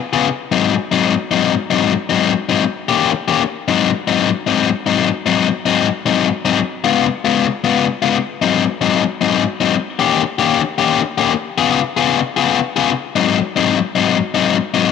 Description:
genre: blues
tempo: 152 BPM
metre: 4/4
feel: swing 67% on 8ths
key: Ab mixolydian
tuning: A4 = 440 Hz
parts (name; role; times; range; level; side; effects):
- overdriven electric guitar; solo; 0.1-14.9 s; Ab2 to Ab4; -14 LUFS; left 8 dB; spring reverb
room: light reverb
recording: none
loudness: -14 LUFS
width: side -6 dB against mid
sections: 0.0-3.4 A section; 3.4-14.9 A section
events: none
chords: 0.3 Ab7; 2.6 Eb7; 3.4 Ab7; 6.6 Db7; 8.2 Ab7; 9.7 Eb7; 11.3 Db7; 12.9 Ab7

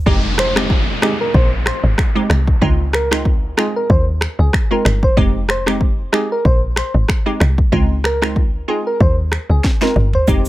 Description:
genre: afrobeats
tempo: 94 BPM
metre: 4/4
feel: swing 55% on 16ths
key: F minor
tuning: A4 = 443 Hz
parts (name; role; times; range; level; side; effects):
- glassy wavetable pluck; accompaniment; 0.1-10.5 s; Ab3 to G4; -21 LUFS; right 2 dB; chorus, plate reverb
- woody log drum bass; bass; 0.1-10.5 s; F1 to Eb2; -17 LUFS; equal; none
- afro-pop drum kit; drums; 0.1-10.5 s; finger snaps, kick drum, rim click, shaker, snare drum, toms; -16 LUFS; equal; overdrive
- downlifter; sound effects; 0.1-5.2 s; none; -25 LUFS; equal; none
- soft struck synth lead; melody; 0.4-10.3 s; Ab4 to C5; -21 LUFS; equal; chorus, plate reverb, digital delay
room: light reverb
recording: none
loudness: -13 LUFS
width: side -16 dB against mid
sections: 0.1-10.5 A section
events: break 0.1-10.3; drum fill 9.6-10.3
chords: 0.1 Fm7; 2.6 Dbmaj7; 5.2 Fm7; 7.7 Dbmaj7

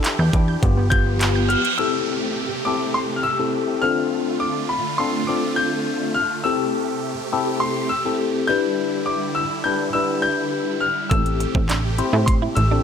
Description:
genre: dance-pop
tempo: 103 BPM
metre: 4/4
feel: straight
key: A minor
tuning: A4 = 440 Hz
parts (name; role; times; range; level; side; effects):
- tine electric piano; accompaniment; 0.0-12.8 s; B3 to C5; -24 LUFS; left 5 dB; phaser, sidechain pumping
- supersaw chords; sustained chords; 0.0-12.8 s; C3 to G4; -27 LUFS; right 3 dB; phaser, sidechain pumping
- wide unison pluck; arpeggios; 0.0-1.8 s; F3 to G6; -32 LUFS; right 4 dB; sidechain pumping, dub echo
- pop drum kit; drums; 0.0-1.8, 11.1-12.7 s; handclaps, hi-hat, kick drum; -21 LUFS; right 1 dB; none
- plucky analog bass; bass; 0.2-1.6, 11.1-12.8 s; G1 to A2; -20 LUFS; right 1 dB; sidechain pumping
- reverse cymbal and downlifter; sound effects; 1.2-6.5 s; none; -30 LUFS; right 3 dB; none
- clear concert grand piano; melody; 0.9-12.8 s; B5 to G6; -24 LUFS; left 2 dB; dub echo
- direct-recorded clean electric guitar; riff; 11.1-12.8 s; A3 to E4; -28 LUFS; right 8 dB; analog chorus
room: light reverb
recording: none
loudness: -18 LUFS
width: side -7 dB against mid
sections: 0.0-1.8 A section; 1.8-12.8 B section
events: reverse cymbal 1.2-1.8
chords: 0.0 Em7; 0.6 G7; 1.8 Am7; 3.8 F6; 6.5 Am7; 8.5 Em7; 11.1 Am7

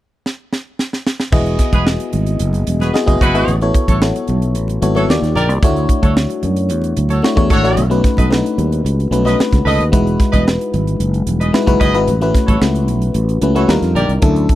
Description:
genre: polished 1980s jazz-funk pop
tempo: 112 BPM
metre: 4/4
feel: straight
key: E major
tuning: A4 = 441 Hz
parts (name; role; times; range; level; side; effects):
- tight funk drum kit; drums; 0.3-14.6 s; crash cymbal, hi-hat, kick drum, snare drum; -16 LUFS; equal; none
- FM electric piano; accompaniment; 1.3-14.6 s; F#3 to D#5; -17 LUFS; left 2 dB; wide subtle chorus
- sustaining fretless electric bass; bass; 1.3-14.5 s; E1 to F#2; -17 LUFS; equal; none
- congas; percussion; 1.3-14.4 s; none; -27 LUFS; right 3 dB; none
- warm horn section; second line; 1.7-14.1 s; E4 to D#5; -19 LUFS; equal; none
room: little or no reverb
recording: dry, close 1970s-style studio recording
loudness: -12 LUFS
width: side -14 dB against mid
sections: 0.0-1.3 A section; 1.3-14.6 B section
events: drum fill 0.3-1.3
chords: 0.0 N.C.; 1.3 Emaj9; 3.5 A6; 5.1 D#maj9; 5.6 Dmaj9; 7.8 B7; 9.9 Emaj9; 12.1 A6; 13.7 D#maj9

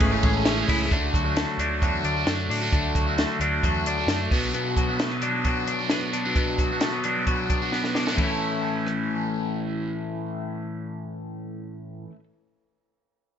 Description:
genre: jangly indie pop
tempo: 132 BPM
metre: 4/4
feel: straight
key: A major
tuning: A4 = 440 Hz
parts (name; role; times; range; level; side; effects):
- combo organ; accompaniment; 0.0-0.9 s; A3 to G#4; -29 LUFS; right 3 dB; none
- crunchy overdriven guitar; accompaniment; 0.0-12.2 s; A2 to A4; -28 LUFS; right 3 dB; phaser
- warm analog pad; sustained chords; 0.0-0.9 s; G#4 to C#6; -40 LUFS; left 3 dB; none
- twelve-string electric guitar; arpeggios; 0.0-12.2 s; A2 to E4; -28 LUFS; left 4 dB; spring reverb, analog delay
- vintage muted picked electric bass; bass; 0.0-4.5 s; G#1 to A2; -29 LUFS; equal; none
- compact cocktail drum kit; drums; 0.0-9.0 s; hi-hat, kick drum, ride cymbal, rim click, snare drum; -26 LUFS; equal; none
room: light reverb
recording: nothing above 7.8 kHz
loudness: -22 LUFS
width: side -8 dB against mid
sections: 0.9-8.2 A section; 8.2-11.8 B section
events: drum fill 7.7-8.2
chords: 0.0 Amaj7; 0.9 D; 4.3 Bm; 8.2 A

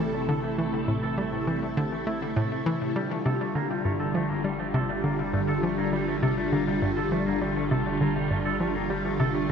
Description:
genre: ambient, sequencer-driven space music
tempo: 101 BPM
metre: 4/4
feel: straight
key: unclear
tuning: A4 = 440 Hz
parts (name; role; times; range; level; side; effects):
- phased string machine; sustained chords; 0.0-9.5 s; C3 to A4; -27 LUFS; equal; ensemble chorus, phaser
- clean electric guitar; arpeggios; 0.0-9.5 s; G3 to A4; -33 LUFS; right 1 dB; auto-pan, low-pass filter, ping-pong delay
- hollow square pluck; riff; 0.0-9.5 s; G2 to A3; -29 LUFS; equal; chorus, ping-pong delay
- round analog bass; bass; 0.0-9.5 s; G1 to A1; -42 LUFS; equal; none
room: wet huge ambient reverb, RT60 8.6 s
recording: in a vast, echoing space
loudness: -24 LUFS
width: side -7 dB against mid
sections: 0.0-9.5 A section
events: fade-in on analog synth bass 0.0-9.5; filter sweep on clean electric guitar 0.0-9.5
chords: 0.0 Am; 3.0 Gm7

